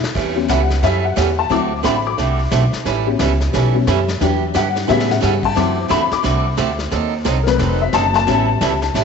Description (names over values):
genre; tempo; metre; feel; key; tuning
country, western swing; 177 BPM; 4/4; swing 63% on 8ths; A mixolydian; A4 = 439 Hz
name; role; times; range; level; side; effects
vintage brush drum kit; drums; 0.0-9.0 s; brushed snare drum, crash cymbal, hi-hat, kick drum, snare drum; -25 LUFS; left 5 dB; none
picked swing-style acoustic guitar; accompaniment; 0.1-9.0 s; D3 to A4; -20 LUFS; right 10 dB; none
upright bass; bass; 0.2-9.0 s; F1 to A2; -19 LUFS; equal; none
honky-tonk upright piano; accompaniment; 0.4-9.0 s; C#3 to D6; -19 LUFS; left 9 dB; none
room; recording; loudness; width
moderate echo chamber reverb, RT60 2.2 s; 1960s-style stereo with parts hard left and right, nothing above 7.9 kHz; -14 LUFS; side -6 dB against mid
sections
0.2-9.0 A section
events
drum fill 0.0, 4.9-5.2; honky-tonk piano solo 0.2-9.0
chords
0.2 A9; 1.5 D9; 2.9 A9; 4.2 Em7; 4.9 A9; 5.6 D9; 6.9 D#dim7; 8.3 A9